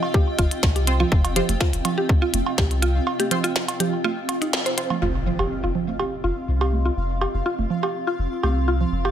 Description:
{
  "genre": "minimal techno",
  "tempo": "123 BPM",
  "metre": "4/4",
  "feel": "straight",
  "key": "unclear",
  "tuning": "A4 = 440 Hz",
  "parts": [
    { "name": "cowbell and congas", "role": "percussion", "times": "0.0-9.1 s", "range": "none", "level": "-28 LUFS", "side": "right 7 dB", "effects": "tape echo" },
    { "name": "granular cloud pad", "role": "texture", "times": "0.0-9.1 s", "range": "C4 to C6", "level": "-29 LUFS", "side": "equal", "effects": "built-in reverb, sidechain pumping" },
    { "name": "pulsing gated texture", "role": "texture", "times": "0.0-9.1 s", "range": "F5", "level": "-35 LUFS", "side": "left 3 dB", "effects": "chorus, built-in reverb, sidechain pumping" },
    { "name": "mallet-like synth pluck", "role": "riff", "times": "0.1-9.1 s", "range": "Eb4 to C5", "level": "-27 LUFS", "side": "equal", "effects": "chorus, sidechain pumping, tape echo" },
    { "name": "electronic kick drum", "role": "drums", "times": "0.1-2.7 s", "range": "none", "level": "-20 LUFS", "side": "equal", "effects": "none" },
    { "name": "punchy sub bass", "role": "bass", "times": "0.4-9.1 s", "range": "F1 to C2", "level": "-23 LUFS", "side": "equal", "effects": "sidechain pumping" },
    { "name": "minimal click drum kit", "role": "drums", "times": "0.4-4.9 s", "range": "hi-hat, snare drum", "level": "-26 LUFS", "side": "left 1 dB", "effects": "none" },
    { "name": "filtered dub chord stab", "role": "stabs", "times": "0.9-4.9 s", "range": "C4 to C5", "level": "-30 LUFS", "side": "right 2 dB", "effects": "phaser, wide subtle chorus, tape echo" },
    { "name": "impact", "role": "sound effects", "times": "5.0-7.0 s", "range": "none", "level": "-33 LUFS", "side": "equal", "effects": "none" }
  ],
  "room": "light reverb, digital ambience",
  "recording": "none",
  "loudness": "-20 LUFS",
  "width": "side -10 dB against mid",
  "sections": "0.0-5.0 A section; 5.0-9.1 B section",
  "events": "break 3.1-5.0; band accent 4.5; impact 5.0-7.0; filter sweep on synth arpeggio sound 5.0-9.1",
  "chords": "0.0 F5"
}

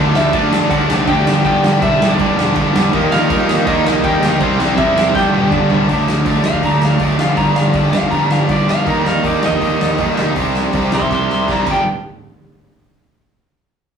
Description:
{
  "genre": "punk rock",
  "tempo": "161 BPM",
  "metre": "4/4",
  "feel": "straight",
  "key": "unclear",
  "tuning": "A4 = 440 Hz",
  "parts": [
    { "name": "distorted electric guitar", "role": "riff", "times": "0.0-11.8 s", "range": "G2 to E4", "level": "-18 LUFS", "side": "left 3 dB", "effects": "distortion" },
    { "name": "sludgy distorted guitar", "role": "riff", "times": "0.0-11.8 s", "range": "G2 to Eb4", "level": "-18 LUFS", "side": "right 4 dB", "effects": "overdrive" },
    { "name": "sludgy distorted guitar", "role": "riff", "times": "0.0-5.9 s", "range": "G2 to Eb4", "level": "-22 LUFS", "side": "right 1 dB", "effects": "none" },
    { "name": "fuzz picked electric bass", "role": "bass", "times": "0.0-11.8 s", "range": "E1 to G2", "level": "-23 LUFS", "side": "equal", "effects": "overdrive" },
    { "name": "lightly driven lead guitar", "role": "melody", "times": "0.2-11.9 s", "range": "C4 to C6", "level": "-19 LUFS", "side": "equal", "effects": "none" },
    { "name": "big rock drum kit", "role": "drums", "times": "0.2-11.8 s", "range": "crash cymbal, hi-hat, kick drum, snare drum, toms", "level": "-20 LUFS", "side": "equal", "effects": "none" }
  ],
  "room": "moderate studio reverb, RT60 0.6 s",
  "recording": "rough rehearsal-room recording, warm saturation, studio reverb",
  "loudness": "-12 LUFS",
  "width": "side -7 dB against mid",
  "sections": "0.0-5.9 A section; 5.9-11.9 B section; 11.9-13.4 C section",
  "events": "drum fill 5.1-5.9, 11.1-11.9; lead electric guitar solo 5.9-11.9",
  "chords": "0.0 D; 1.3 G; 2.9 Eb; 4.4 C; 5.1 G; 5.9 D; 7.2 G; 8.9 Eb; 10.4 C; 11.7 G; 11.9 N.C."
}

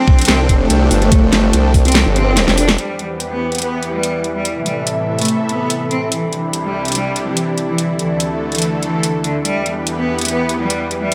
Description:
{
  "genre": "heavy wobble dubstep",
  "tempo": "144 BPM",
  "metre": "4/4",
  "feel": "half-time",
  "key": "E phrygian",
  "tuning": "A4 = 440 Hz",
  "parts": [
    { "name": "rich cello", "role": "melody", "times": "0.0-11.1 s", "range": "D3 to D4", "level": "-22 LUFS", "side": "equal", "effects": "dub echo" },
    { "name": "supersaw pad", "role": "sustained chords", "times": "0.0-11.1 s", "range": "C2 to E5", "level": "-25 LUFS", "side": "equal", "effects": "vintage 12-bit sampler grit, sidechain pumping, low-pass filter" },
    { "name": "warbly tape-like pad", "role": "texture", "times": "0.0-11.1 s", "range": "C4 to B5", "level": "-26 LUFS", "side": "equal", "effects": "chorus, built-in reverb, sidechain pumping" },
    { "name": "electronic kick drum", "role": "drums", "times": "0.1-1.8 s", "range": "none", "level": "-14 LUFS", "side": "equal", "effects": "small room reverb" },
    { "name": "dubstep drum kit", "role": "drums", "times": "0.2-11.1 s", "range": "hi-hat, snare drum", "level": "-20 LUFS", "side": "equal", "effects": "small room reverb" },
    { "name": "formant-sweep wobble bass", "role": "bass", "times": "0.3-2.8 s", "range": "F1 to C2", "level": "-17 LUFS", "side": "equal", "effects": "chorus, overdrive" }
  ],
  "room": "light reverb",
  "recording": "none",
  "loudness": "-16 LUFS",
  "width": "mono",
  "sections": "0.0-2.8 A section; 2.8-11.1 B section",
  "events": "drop 0.0-2.8; drum fill 2.4-2.8",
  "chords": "0.0 F6; 2.8 Em; 4.5 Am; 6.1 Cadd9; 7.8 Dsus2; 9.5 Em"
}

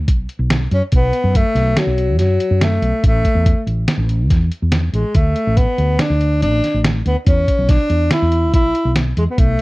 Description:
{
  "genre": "progressive instrumental, band music in an uneven meter",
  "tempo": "142 BPM",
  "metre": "5/4",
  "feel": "straight",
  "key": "unclear",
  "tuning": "A4 = 444 Hz",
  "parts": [
    { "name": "woody fretless electric bass", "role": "bass", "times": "0.0-9.6 s", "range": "A1 to F#2", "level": "-17 LUFS", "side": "equal", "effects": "analog chorus" },
    { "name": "lo-fi sampler-style drum kit", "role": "drums", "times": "0.1-9.6 s", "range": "hi-hat, kick drum, snare drum", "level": "-16 LUFS", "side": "equal", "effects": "none" },
    { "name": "mellow tenor saxophone", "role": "melody", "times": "0.7-9.6 s", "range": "F#3 to E4", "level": "-18 LUFS", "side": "left 1 dB", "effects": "none" }
  ],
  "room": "little or no reverb",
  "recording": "dry, close 1970s-style studio recording",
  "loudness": "-13 LUFS",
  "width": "side -20 dB against mid",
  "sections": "0.0-9.6 A section",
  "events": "none",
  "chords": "0.0 N.C.; 0.9 B5; 3.0 A5; 5.2 D5; 7.3 E5"
}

